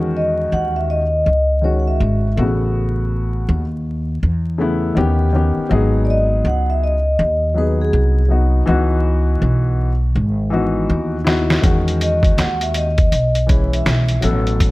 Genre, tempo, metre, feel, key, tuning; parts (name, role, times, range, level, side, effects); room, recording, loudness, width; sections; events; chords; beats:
hip hop, jazz-hop; 81 BPM; 4/4; swing 63% on 16ths; E major; A4 = 440 Hz
dark concert grand piano; accompaniment; 0.0-14.7 s; B2 to A4; -20 LUFS; left 2 dB
upright bass; bass; 0.0-14.7 s; G#1 to E2; -17 LUFS; equal
vibraphone with soft mallets; melody; 0.2-14.2 s; G#4 to F#5; -20 LUFS; equal
lo-fi sampler-style drum kit; drums; 11.3-14.7 s; hi-hat, kick drum, snare drum; -17 LUFS; equal
studio reverb; vinyl crackle; -15 LUFS; side -20 dB against mid
0.0-14.7 A section
drum fill 10.2-11.6
0.0 Emaj13; 2.4 A69; 5.0 D#aug7; 5.7 G#m7; 8.7 C#m11; 11.6 Emaj13
0.52 1.26 2.01 | 2.75 3.49 4.23 4.97 | 5.71 6.45 7.19 7.93 | 8.67 9.41 10.15 10.89 | 11.63 12.38 13.12 13.86 | 14.60